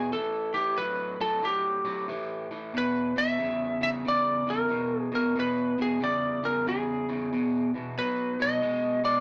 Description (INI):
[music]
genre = blues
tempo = 92 BPM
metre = 4/4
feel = swing 65% on 8ths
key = E mixolydian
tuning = A4 = 439 Hz
[part]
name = lightly driven lead guitar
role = melody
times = 0.0-9.2 s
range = G4 to E5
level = -30 LUFS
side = equal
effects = none
[part]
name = electric guitar at the edge of break-up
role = riff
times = 0.0-9.2 s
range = E2 to G#3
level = -32 LUFS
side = equal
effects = spring reverb
[sound]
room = wet studio reverb, RT60 0.6 s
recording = none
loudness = -28 LUFS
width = mono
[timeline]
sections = 0.0-9.2 A section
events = none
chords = 0.1 A5; 2.7 E; 8.0 B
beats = | 0.13 0.78 1.44 2.09 | 2.74 3.40 4.05 4.70 | 5.36 6.01 6.66 7.32 | 7.97 8.62